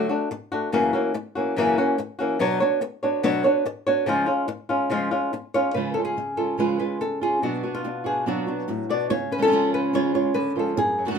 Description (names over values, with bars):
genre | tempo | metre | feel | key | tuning
flamenco | 143 BPM | 4/4 | straight | C# phrygian dominant | A4 = 441 Hz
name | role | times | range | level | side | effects
flamenco guitar | melody | 0.0-11.2 s | F#2 to D5 | -22 LUFS | left 1 dB | none
flamenco guitar | stabs | 5.8-11.2 s | B2 to F#4 | -27 LUFS | right 6 dB | none
room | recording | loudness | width
moderate studio reverb, RT60 0.5 s | minimal, uncompressed stereo recording | -21 LUFS | side -6 dB against mid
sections
0.0-5.8 A section; 5.8-11.2 B section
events
none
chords
0.0 D; 0.7 F#7; 2.4 Bmadd9; 4.1 C#; 7.4 Bm; 9.1 C#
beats
0.32 | 0.73 1.16 1.57 1.99 | 2.41 2.83 3.25 3.67 | 4.09 4.50 4.92 5.34 | 5.76 6.18 6.60 7.01 | 7.43 7.85 8.27 8.69 | 9.11 9.52 9.94 10.36 | 10.78